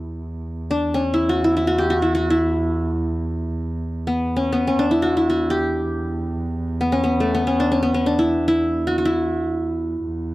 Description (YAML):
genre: Turkish makam ensemble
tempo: free time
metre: none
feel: none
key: E makam huseyni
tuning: A4 = 439 Hz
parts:
  - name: qanun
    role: melody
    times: 0.0-10.3 s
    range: A3 to G4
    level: -19 LUFS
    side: equal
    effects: none
  - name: warm double bass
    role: drone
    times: 0.0-10.3 s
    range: E2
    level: -26 LUFS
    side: right 1 dB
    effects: none
room: small room reverb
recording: dry, close 1970s-style studio recording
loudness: -18 LUFS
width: side -18 dB against mid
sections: 0.0-10.3 A section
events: none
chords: none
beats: free time